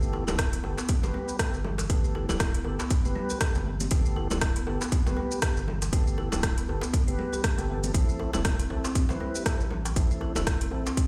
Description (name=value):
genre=afro house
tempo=119 BPM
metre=4/4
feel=swing 57% on 16ths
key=unclear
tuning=A4 = 441 Hz
part: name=marimba with medium hard mallets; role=arpeggios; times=0.0-11.0 s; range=E3 to G4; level=-38 LUFS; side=equal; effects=sidechain pumping, low-pass filter, delay
part: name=mellow tonewheel organ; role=stabs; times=0.0-10.9 s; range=B3 to B4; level=-38 LUFS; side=equal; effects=chorus vibrato, slow rotary speaker, sidechain pumping, delay
part: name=round analog bass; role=bass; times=0.0-10.8 s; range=D1 to A1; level=-34 LUFS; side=equal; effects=sidechain pumping
part: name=house drum kit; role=drums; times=0.0-11.1 s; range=hi-hat, rim click, shaker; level=-36 LUFS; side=equal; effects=none
part: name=djembe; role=percussion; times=0.1-11.0 s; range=none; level=-38 LUFS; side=equal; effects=none
part: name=congas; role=percussion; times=0.3-10.5 s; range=none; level=-40 LUFS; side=equal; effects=none
part: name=electronic kick drum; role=drums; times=0.4-11.1 s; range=none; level=-28 LUFS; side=equal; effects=none
room=light reverb, digital ambience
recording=played on a big sound system in a bare room, stone room reverb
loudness=-28 LUFS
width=mono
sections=0.0-11.1 A section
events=none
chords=0.0 Gadd9; 7.9 Am